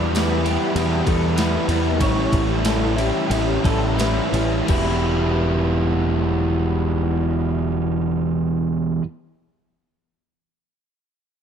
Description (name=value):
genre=rock, shoegaze and dream pop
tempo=84-99 BPM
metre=4/4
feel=straight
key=E minor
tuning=A4 = 440 Hz
part: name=electric guitar through a small old amp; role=arpeggios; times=0.0-5.5 s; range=E4 to D5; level=-30 LUFS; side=left 2 dB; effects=ensemble chorus, analog delay
part: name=overdriven electric guitar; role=riff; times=0.0-9.0 s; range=A2 to B4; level=-24 LUFS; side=left 10 dB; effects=analog chorus
part: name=overdriven semi-hollow guitar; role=riff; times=0.0-9.0 s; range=E2 to E4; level=-23 LUFS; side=right 10 dB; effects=reverse reverb
part: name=growling picked electric bass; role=bass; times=0.0-9.0 s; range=E1 to E2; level=-23 LUFS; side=equal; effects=overdrive
part: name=tambourine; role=percussion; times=0.1-5.0 s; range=none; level=-38 LUFS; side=left 7 dB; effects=none
part: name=clean 12-bit digital drum machine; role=drums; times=0.2-4.9 s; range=crash cymbal, kick drum, ride cymbal, snare drum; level=-26 LUFS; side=equal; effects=none
room=digital ambience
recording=dark, warm production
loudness=-18 LUFS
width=side -8 dB against mid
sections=0.0-4.7 A section; 4.7-7.5 B section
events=slowing down 0.0-4.7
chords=0.0 Em; 2.0 A7; 4.7 Em